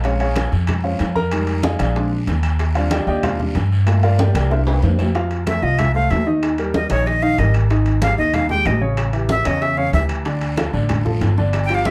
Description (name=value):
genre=Afro-Cuban jazz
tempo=188 BPM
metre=4/4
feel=straight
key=unclear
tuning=A4 = 439 Hz
part: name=warm grand piano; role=accompaniment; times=0.0-11.9 s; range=Db3 to Bb5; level=-24 LUFS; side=equal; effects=none
part: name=upright bass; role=bass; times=0.0-11.9 s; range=G1 to G2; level=-21 LUFS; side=equal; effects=none
part: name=bongos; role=percussion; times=0.0-11.9 s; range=none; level=-34 LUFS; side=equal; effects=none
part: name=congas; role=percussion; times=0.0-11.9 s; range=none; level=-28 LUFS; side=equal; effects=none
part: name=guiro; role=percussion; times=0.0-5.2, 10.3-11.9 s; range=none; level=-40 LUFS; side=equal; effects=none
part: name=timbales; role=percussion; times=0.0-11.9 s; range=none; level=-31 LUFS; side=equal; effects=none
part: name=claves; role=percussion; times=0.4-11.7 s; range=none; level=-42 LUFS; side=equal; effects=none
part: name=breathy bright jazz flute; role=melody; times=5.5-11.9 s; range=Db5 to G5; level=-22 LUFS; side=equal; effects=slapback echo
room=light reverb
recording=dark, warm production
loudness=-18 LUFS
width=mono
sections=0.0-5.2 A section; 5.2-11.9 A section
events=grand piano solo 0.0-5.2; drum fill 4.4-5.2; flute solo 5.2-11.9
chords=0.0 Bbm9; 1.3 Fm9; 2.0 Bb7; 2.6 Ebmaj13; 3.9 Gm9; 4.5 C9; 5.2 F; 6.4 Eb; 7.7 Ab5; 9.0 A7; 10.3 Dm